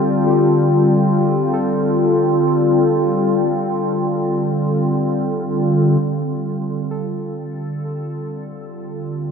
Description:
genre	ambient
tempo	free time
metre	none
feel	none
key	F major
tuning	A4 = 440 Hz
part	evolving wavetable pad	sustained chords	0.0-9.3 s	Eb2 to A4	-16 LUFS	left 1 dB	phaser, built-in reverb
part	muted felt-like synth keys	arpeggios	0.0-8.9 s	G4 to A4	-28 LUFS	right 1 dB	chorus, ping-pong delay
room	wet huge ambient reverb, RT60 7.6 s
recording	none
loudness	-16 LUFS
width	side -6 dB against mid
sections	0.0-6.0 A section; 6.0-9.3 B section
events	fade-in on ambient pad 6.0-9.3; fade-in on synth keys 6.0-9.3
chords	0.0 F69/D; 8.8 Ebmaj7

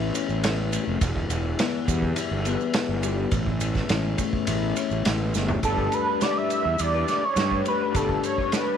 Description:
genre	psychedelic rock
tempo	104 BPM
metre	4/4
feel	straight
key	unclear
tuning	A4 = 437 Hz
part	electric guitar through a small old amp	riff	0.0-8.8 s	A2 to B4	-28 LUFS	left 12 dB	rotary speaker
part	fuzz fingered electric bass	bass	0.0-8.2 s	E1 to G2	-27 LUFS	right 2 dB	overdrive
part	hand-pumped harmonium	drone	0.0-5.7 s	E2 to E3	-35 LUFS	equal	none
part	vintage drum kit	drums	0.1-8.7 s	kick drum, ride cymbal, snare drum, toms	-28 LUFS	right 1 dB	none
part	maracas	percussion	0.1-8.7 s	none	-39 LUFS	right 19 dB	none
part	octave-doubled lead	melody	5.6-8.8 s	A4 to E5	-24 LUFS	right 2 dB	chorus, slapback echo
room	light reverb, small room ambience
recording	1960s-style stereo with parts hard left and right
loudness	-22 LUFS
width	side -8 dB against mid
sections	0.0-5.6 A section; 5.6-8.8 B section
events	drum fill 5.3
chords	0.0 A; 1.0 Em; 3.3 A; 5.6 Gadd9

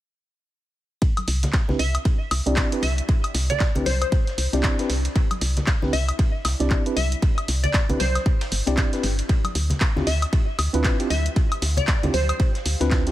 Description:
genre	deep house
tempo	116 BPM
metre	4/4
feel	swing 59% on 16ths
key	C major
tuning	A4 = 440 Hz
part	dusty soul sampler-style drum kit	drums	1.0-13.1 s	ride cymbal, snare drum	-37 LUFS	right 3 dB	overdrive, high-pass filter on cymbals, high-pass filter on snare, high-pass filter on room
part	electronic kick drum	drums	1.0-13.0 s	none	-21 LUFS	equal	none
part	deep dark ambient pad	texture	4.0-13.1 s	E4 to C6	-45 LUFS	left 1 dB	none
part	punchy analog drum machine	drums	1.2-13.1 s	handclaps, hi-hat, woodblock	-28 LUFS	left 1 dB	dub echo
part	congas	percussion	1.2-12.3 s	none	-31 LUFS	left 1 dB	none
part	woody FM bass	bass	1.3-13.1 s	G1 to D2	-23 LUFS	equal	sidechain pumping
part	tine electric piano	stabs	1.7-13.1 s	C4 to D5	-28 LUFS	equal	medium stereo tremolo, vintage 12-bit sampler grit, sidechain pumping, low-pass filter, analog delay
part	glassy wavetable pluck	melody	1.8-12.4 s	C5 to E5	-30 LUFS	left 1 dB	chorus, analog delay
room	little or no reverb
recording	echo-heavy mix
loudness	-20 LUFS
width	side -14 dB against mid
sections	1.0-13.1 A section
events	filter sweep on tine electric piano 1.0-13.1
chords	1.0 Cmaj9; 9.3 Dm11

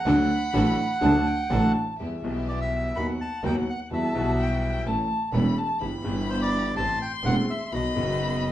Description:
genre	tango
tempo	126 BPM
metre	4/4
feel	rubato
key	E minor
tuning	A4 = 442 Hz
part	bandoneon	melody	0.0-8.5 s	C5 to B5	-29 LUFS	right 1 dB	none
part	warm violin	second line	0.0-8.5 s	E5 to C6	-32 LUFS	left 2 dB	none
part	warm concert grand piano	accompaniment	0.1-8.5 s	E1 to A4	-28 LUFS	equal	none
part	rich chamber string section	stabs	0.1-8.5 s	G3 to A4	-35 LUFS	right 1 dB	none
part	clear double bass	bass	0.1-8.5 s	E1 to E2	-27 LUFS	right 1 dB	none
room	wet club reverb, RT60 0.5 s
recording	heard from further back in the room, nothing above 10.5 kHz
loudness	-23 LUFS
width	side -12 dB against mid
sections	0.0-2.0 A section; 2.0-8.5 B section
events	none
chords	0.1 D; 2.0 Em; 3.0 B/D#; 3.9 Emadd9; 4.9 A; 5.8 Em/G; 6.8 Am7; 7.7 B

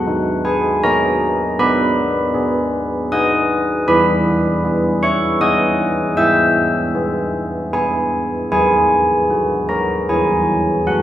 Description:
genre	classical, tune for church bells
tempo	78 BPM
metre	3/4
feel	straight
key	unclear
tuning	A4 = 440 Hz
part	carillon bells	solo	0.0-11.0 s	D#3 to E6	-14 LUFS	equal	none
room	wet recital hall reverb, RT60 1.7 s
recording	recorded in a church or concert hall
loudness	-14 LUFS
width	side -12 dB against mid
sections	0.0-11.0 A section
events	none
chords	0.0 G#m; 1.6 G#m/B; 3.9 E; 6.2 E/G#; 8.5 B/D#; 10.1 C#m/E

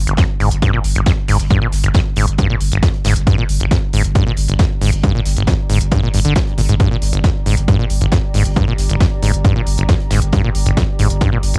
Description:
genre	driving peak-time techno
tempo	136 BPM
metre	4/4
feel	straight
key	G phrygian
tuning	A4 = 440 Hz
part	saturated sub bass	bass	0.0-11.6 s	G1	-19 LUFS	equal	tube saturation, sidechain pumping, low-pass filter
part	deep dark ambient pad	texture	0.9-11.6 s	G4 to Bb5	-38 LUFS	equal	chorus, built-in reverb, sidechain pumping, cassette tape
part	acid bass, saw	riff	0.1-11.6 s	G1 to F3	-19 LUFS	equal	cassette tape, sidechain pumping, analog delay
part	electronic hi-hat	drums	0.1-11.6 s	none	-30 LUFS	equal	sidechain pumping on hats, cassette tape
part	electronic kick drum	drums	0.2-11.3 s	none	-19 LUFS	equal	cassette tape
part	modern studio drum kit	drums	0.2-11.5 s	hi-hat, snare drum	-35 LUFS	equal	sidechain pumping on hats, high-pass filter on hats, cassette tape, high-pass filter on snare, high-pass filter on room
room	little or no reverb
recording	home recording on cassette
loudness	-15 LUFS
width	mono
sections	0.0-11.6 A section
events	fade-in on ambient pad 0.0-11.6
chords	0.0 Gm

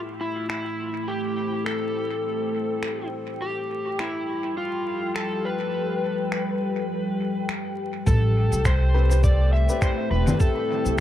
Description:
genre	ambient dub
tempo	103 BPM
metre	4/4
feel	swing 57% on 16ths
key	A minor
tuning	A4 = 440 Hz
part	deep dark ambient pad	sustained chords	0.0-11.0 s	F3 to G5	-29 LUFS	left 1 dB	chorus, built-in reverb
part	overdriven slide guitar	melody	0.2-10.9 s	E4 to E5	-28 LUFS	left 1 dB	dub echo
part	electronic finger snaps, shaker and congas	drums	0.5-11.0 s	none	-31 LUFS	left 1 dB	dub echo
part	upright bass	bass	8.1-11.0 s	E1 to C2	-20 LUFS	equal	none
part	electronic kick drum	drums	8.1-10.5 s	none	-20 LUFS	equal	none
part	warm upright piano	stabs	8.9-11.0 s	C4 to B4	-33 LUFS	left 3 dB	dub echo
room	light reverb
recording	echo-heavy mix, vinyl crackle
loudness	-22 LUFS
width	side -12 dB against mid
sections	0.0-8.1 A section; 8.1-11.0 B section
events	none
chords	0.0 Am7; 3.4 G7; 8.1 Am7

